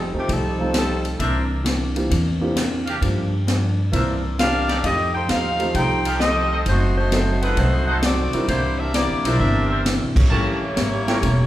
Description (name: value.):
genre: jazz, big band swing.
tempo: 132 BPM.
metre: 4/4.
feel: swing 67% on 8ths.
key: unclear.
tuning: A4 = 440 Hz.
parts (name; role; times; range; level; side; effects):
warm saxophone section; melody; 0.0-1.1, 4.4-11.5 s; Eb3 to G5; -23 LUFS; left 1 dB; none.
vintage hollow-body jazz guitar; accompaniment; 0.0-11.5 s; F#2 to G4; -27 LUFS; left 1 dB; none.
upright bass; bass; 0.0-11.5 s; E1 to G2; -23 LUFS; equal; none.
warm concert grand piano; accompaniment; 0.1-11.2 s; E3 to Bb4; -27 LUFS; right 1 dB; none.
swinging big-band drum kit; drums; 0.3-11.4 s; crash cymbal, hi-hat, kick drum, ride cymbal, snare drum; -25 LUFS; equal; none.
clear trumpet section; stabs; 1.2-11.2 s; D4 to A5; -28 LUFS; equal; none.
room: wet recital hall reverb, RT60 1.7 s.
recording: recorded in a church or concert hall.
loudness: -18 LUFS.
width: side -14 dB against mid.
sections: 0.0-11.5 A section.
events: band accent 10.1.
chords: 0.0 F9; 1.2 C9; 3.0 Gm7; 3.9 C9; 4.8 F9; 6.7 F#dim7; 8.5 C9; 10.3 A7b9.